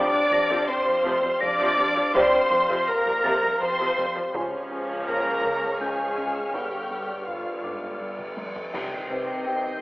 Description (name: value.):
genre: cinematic, suspense film score.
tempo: 82 BPM.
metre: 3/4.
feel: straight.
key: unclear.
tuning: A4 = 439 Hz.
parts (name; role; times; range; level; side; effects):
warm symphonic violin section; melody; 0.0-9.8 s; F5 to D6; -28 LUFS; equal; none.
mellow clarinet; second line; 0.0-9.8 s; C4 to D5; -28 LUFS; equal; none.
warm symphonic violin section; second line; 0.0-9.8 s; F4 to Eb5; -28 LUFS; equal; none.
warm symphonic viola section; accompaniment; 0.0-9.8 s; C3 to C#4; -32 LUFS; equal; none.
dark French horn section; sustained chords; 0.0-9.8 s; F3 to D4; -32 LUFS; left 1 dB; none.
dark trombone section; sustained chords; 0.0-9.8 s; D3 to C#4; -29 LUFS; equal; none.
glass harmonica; sustained chords; 0.0-9.8 s; C4 to G5; -34 LUFS; equal; none.
round analog bass; riff; 0.0-9.7 s; F2 to C#4; -42 LUFS; equal; none.
dark symphonic cello section; bass; 0.0-9.8 s; C#2 to C3; -40 LUFS; equal; none.
rich symphonic double bass section; bass; 0.0-9.8 s; F1 to C#2; -42 LUFS; right 1 dB; none.
dark symphonic violin section; texture; 0.0-9.8 s; C6 to C7; -37 LUFS; left 1 dB; none.
taiko ensemble; drums; 0.1-9.8 s; none; -42 LUFS; equal; none.
celesta; texture; 0.3-9.8 s; B4 to Bb6; -35 LUFS; left 1 dB; none.
cymbal swell, clash cymbals and concert bass drum; percussion; 4.3-9.8 s; none; -39 LUFS; equal; none.
timpani; percussion; 8.7-9.8 s; C3; -42 LUFS; equal; none.
room: wet concert hall reverb, RT60 2.1 s.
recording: telephone sound.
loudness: -22 LUFS.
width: side -20 dB against mid.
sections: 0.0-8.7 A section; 8.7-9.8 B section.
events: drum fill 8.2-8.7; band accent 8.7-9.5.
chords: 0.0 Fsus2; 4.3 C#; 6.5 G7; 8.7 Cm.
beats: 0.69 1.42 | 2.15 2.88 3.61 | 4.34 5.08 5.81 | 6.54 7.27 8.00 | 8.73 9.46.